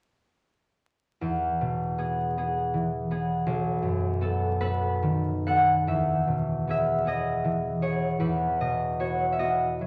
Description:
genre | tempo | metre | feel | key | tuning
classical, solo harp piece | 45-56 BPM (dotted quarters) | 6/8 | rubato | E major | A4 = 438 Hz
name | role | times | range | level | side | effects
concert harp | solo | 1.2-9.9 s | B1 to F#5 | -27 LUFS | equal | none
room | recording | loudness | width
wet recital hall reverb, RT60 1.6 s | vinyl crackle | -27 LUFS | mono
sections
1.2-5.9 A section; 5.9-9.9 B section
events
none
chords
1.2 E; 3.5 B7; 5.9 E; 8.2 B/E

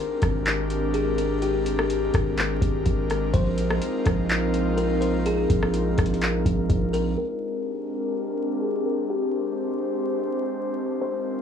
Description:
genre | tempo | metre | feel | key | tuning
hip hop, atmospheric cloud-rap | 125 BPM | 4/4 | half-time | Ab lydian | A4 = 439 Hz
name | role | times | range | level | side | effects
buzzing kalimba | melody | 0.0-11.4 s | G4 to C5 | -29 LUFS | left 4 dB | low-pass filter, slapback echo
airy breathy pad | sustained chords | 0.0-11.4 s | Ab3 to C5 | -27 LUFS | equal | chorus, sidechain pumping, low-pass filter
long sustained 808-style bass | bass | 0.2-7.2 s | Ab1 to Bb1 | -26 LUFS | right 1 dB | none
booming analog drum machine | drums | 0.2-7.0 s | handclaps, hi-hat, kick drum, rim click | -25 LUFS | equal | none
room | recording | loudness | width
light reverb | vinyl crackle, studio ambience | -22 LUFS | side -8 dB against mid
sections
0.0-7.2 A section; 7.2-11.4 B section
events
none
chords
0.0 Abmaj9#11; 3.3 Bb9sus4; 7.2 Abmaj9#11

